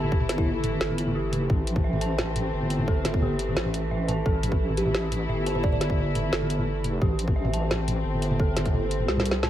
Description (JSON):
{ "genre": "half-time drum and bass", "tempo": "174 BPM", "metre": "4/4", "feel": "half-time", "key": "A minor", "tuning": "A4 = 439 Hz", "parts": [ { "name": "dark studio string section", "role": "sustained chords", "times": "0.0-9.5 s", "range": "E3 to E4", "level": "-33 LUFS", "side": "left 1 dB", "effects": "sidechain pumping" }, { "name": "dark detuned synth bell", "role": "arpeggios", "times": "0.0-9.5 s", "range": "G4 to A5", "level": "-33 LUFS", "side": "right 2 dB", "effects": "chorus, vintage 12-bit sampler grit, digital delay" }, { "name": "deep soft wobble bass", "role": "bass", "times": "0.0-9.5 s", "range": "G1 to C2", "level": "-28 LUFS", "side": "equal", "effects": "chorus" }, { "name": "drum and bass drum kit", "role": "drums", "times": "0.0-9.5 s", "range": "hi-hat, snare drum, toms", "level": "-30 LUFS", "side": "equal", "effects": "none" }, { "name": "electronic kick drum", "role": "drums", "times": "0.1-8.7 s", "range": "none", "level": "-25 LUFS", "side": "equal", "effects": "none" }, { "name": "kalimba", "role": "melody", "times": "0.4-0.6, 4.8-5.8 s", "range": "E4 to D5", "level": "-34 LUFS", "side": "equal", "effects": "ping-pong delay" } ], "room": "little or no reverb", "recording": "none", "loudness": "-23 LUFS", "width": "side -12 dB against mid", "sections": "0.0-9.5 A section", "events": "drum fill 9.1-9.5", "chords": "0.0 A5" }